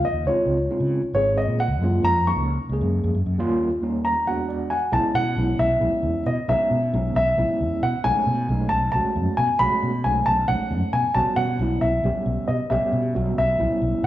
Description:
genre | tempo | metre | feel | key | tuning
electric jazz fusion | 270 BPM (eighths) | 7/8 | straight | B mixolydian from 4.9 s | A4 = 440 Hz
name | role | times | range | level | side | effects
dark grand piano | melody | 0.0-14.1 s | Db5 to Db6 | -22 LUFS | left 1 dB | none
overdriven tine electric piano | accompaniment | 0.0-14.0 s | Eb2 to F#5 | -26 LUFS | right 1 dB | medium tremolo
fretless electric bass | bass | 0.0-14.1 s | Ab1 to Db3 | -24 LUFS | equal | none
room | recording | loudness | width
wet large studio reverb, RT60 1.3 s | band playing live in one room | -20 LUFS | side -13 dB against mid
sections
0.0-4.9 A section; 4.9-14.1 B section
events
tine electric piano fill 4.3-4.9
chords
0.3 Dbmaj9; 1.8 Gbmaj9; 3.4 Eb9; 4.3 E9; 4.9 Bsus4; 8.1 B13; 11.2 Em6/B

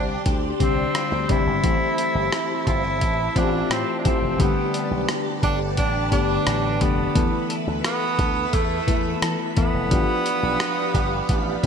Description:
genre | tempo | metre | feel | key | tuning
1980s-style pop | 87 BPM | 4/4 | straight | A minor | A4 = 440 Hz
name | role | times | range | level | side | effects
clear tenor saxophone | melody | 0.0-11.7 s | A3 to E4 | -25 LUFS | right 3 dB | ping-pong delay
soft electric-piano-like synth keys | accompaniment | 0.0-11.7 s | D3 to A4 | -26 LUFS | left 7 dB | chorus
phased string machine | sustained chords | 0.0-11.7 s | G4 to C6 | -30 LUFS | equal | ensemble chorus, phaser
direct-recorded clean electric guitar | riff | 0.0-11.7 s | E3 to A4 | -32 LUFS | right 7 dB | analog chorus, ping-pong delay
slap bass with an envelope filter | bass | 0.0-11.7 s | F1 to E3 | -27 LUFS | equal | none
boom bap sampler-style drum kit | drums | 0.3-11.7 s | hi-hat, kick drum, rim click | -24 LUFS | equal | gated reverb
room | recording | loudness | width
moderate plate reverb, RT60 2.9 s | bright 1980s-style digital production | -19 LUFS | side -7 dB against mid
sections
0.0-11.7 A section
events
none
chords
0.0 Csus2; 1.6 Am7; 4.4 Gadd9; 7.2 Esus4; 9.9 G7

